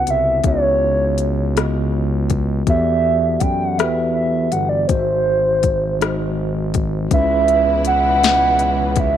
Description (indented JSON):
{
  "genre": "slow six-eight R&B",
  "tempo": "54 BPM (dotted quarters)",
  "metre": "6/8",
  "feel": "straight",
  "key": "C# minor",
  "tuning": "A4 = 441 Hz",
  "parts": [
    { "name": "hollow clarinet-like synth lead", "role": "melody", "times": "0.0-9.2 s", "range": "B#4 to G5", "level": "-17 LUFS", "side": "right 2 dB", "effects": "chorus" },
    { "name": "mellow tine electric piano", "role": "accompaniment", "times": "0.0-9.2 s", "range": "C#3 to E5", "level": "-23 LUFS", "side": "equal", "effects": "medium stereo tremolo" },
    { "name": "smooth gliding synth bass", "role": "bass", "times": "0.0-9.2 s", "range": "G1 to F#2", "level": "-21 LUFS", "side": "equal", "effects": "none" },
    { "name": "smooth R&B drum kit", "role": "drums", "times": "0.1-9.1 s", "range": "hi-hat, kick drum, rim click, snare drum", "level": "-20 LUFS", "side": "left 4 dB", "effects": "overdrive" },
    { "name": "warm studio string section", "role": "sustained chords", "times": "7.1-9.2 s", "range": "B2 to E4", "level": "-27 LUFS", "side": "left 2 dB", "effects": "none" }
  ],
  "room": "light reverb",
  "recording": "1960s-style stereo",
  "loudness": "-15 LUFS",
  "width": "side -10 dB against mid",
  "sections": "0.0-7.1 A section; 7.1-9.2 B section",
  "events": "none",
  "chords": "0.0 C#m11; 2.7 Em11; 4.9 G#7b13; 7.1 C#m9"
}